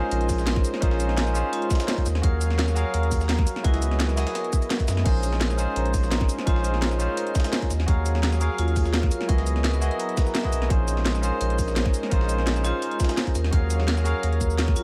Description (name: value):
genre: liquid drum and bass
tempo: 170 BPM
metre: 4/4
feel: straight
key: Bb minor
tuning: A4 = 440 Hz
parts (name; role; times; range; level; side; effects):
- barky tine electric piano; accompaniment; 0.0-14.8 s; Gb3 to Eb6; -32 LUFS; equal; digital delay
- lush unison pad; sustained chords; 0.0-14.8 s; Gb3 to F5; -37 LUFS; equal; chorus, sidechain pumping
- vibraphone with hard mallets; arpeggios; 0.0-14.8 s; Fb4 to Bb5; -35 LUFS; equal; tape echo
- saturated sub bass; bass; 0.1-14.8 s; Bb1 to Gb2; -26 LUFS; equal; tube saturation
- drum and bass drum kit; drums; 0.1-14.8 s; crash cymbal, hi-hat, shaker, snare drum; -32 LUFS; equal; none
- dusty soul sampler-style drum kit; drums; 0.1-14.8 s; hi-hat, snare drum; -40 LUFS; equal; none
- electronic kick drum; drums; 0.3-14.7 s; none; -25 LUFS; equal; none
room: light reverb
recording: none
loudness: -24 LUFS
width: mono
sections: 0.0-14.8 A section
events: none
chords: 0.0 Bbm11; 2.1 Ebm11; 3.6 Dbm11; 5.1 Bbm11; 7.7 Ebm11; 9.3 Dbm11; 10.7 Bbm11; 13.4 Ebm11